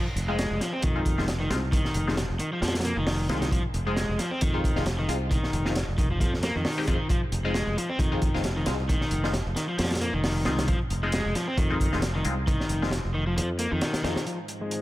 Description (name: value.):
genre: breakbeat, breaks.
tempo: 134 BPM.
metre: 4/4.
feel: swing 56% on 16ths.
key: F minor.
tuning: A4 = 440 Hz.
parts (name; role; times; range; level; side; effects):
crunchy overdriven guitar; riff; 0.0-14.8 s; Eb3 to C4; -30 LUFS; left 1 dB; tube saturation, vintage 12-bit sampler grit, low-pass filter, dub echo.
modern bright fingered electric bass; bass; 0.2-14.1 s; F1 to F2; -29 LUFS; equal; none.
crunchy breakbeat drum kit; drums; 0.2-14.8 s; hi-hat, kick drum, snare drum; -28 LUFS; equal; high-pass filter on kick, high-pass filter on hats, high-pass filter on cymbals, high-pass filter on snare, high-pass filter on room.
band-passed chord stab; stabs; 0.3-14.2 s; Ab3 to G4; -34 LUFS; left 2 dB; phaser, dub echo.
dark analog pad; sustained chords; 14.3-14.8 s; Ab3 to C5; -37 LUFS; equal; chorus, sidechain pumping.
room: studio ambience.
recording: none.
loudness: -24 LUFS.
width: side -16 dB against mid.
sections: 0.0-14.3 A section.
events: kick drops out 13.4-14.3.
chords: 0.0 Fm7.